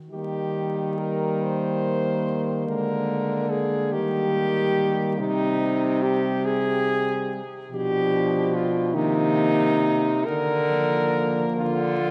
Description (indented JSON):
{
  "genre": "classical, lyrical piece for horn quartet",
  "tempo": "47 BPM (dotted quarters)",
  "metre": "6/8",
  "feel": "uneven beats, rubato",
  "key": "Eb major",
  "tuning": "A4 = 440 Hz",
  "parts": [
    { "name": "warm French horn", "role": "melody", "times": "0.1-12.1 s", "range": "Eb4 to C5", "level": "-27 LUFS", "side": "equal", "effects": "none" },
    { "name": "dark French horn", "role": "accompaniment", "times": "0.1-12.1 s", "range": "Eb3 to Ab3", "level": "-32 LUFS", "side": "equal", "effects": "none" },
    { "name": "warm French horn", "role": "bass", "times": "0.1-12.1 s", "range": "B2 to Eb3", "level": "-30 LUFS", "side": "equal", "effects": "none" },
    { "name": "mellow French horn", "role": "second line", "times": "0.2-12.1 s", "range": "Bb3 to D4", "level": "-32 LUFS", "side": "equal", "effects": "none" }
  ],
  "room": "wet cathedral reverb, RT60 5.0 s",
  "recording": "dark, warm production, vinyl crackle",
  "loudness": "-24 LUFS",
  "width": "mono",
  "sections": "0.1-12.1 A section",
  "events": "none",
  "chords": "0.1 Eb; 2.7 Bb7/D; 3.9 Eb; 5.2 Cm; 7.7 G7/B; 8.9 Cm7; 10.3 Bb/D"
}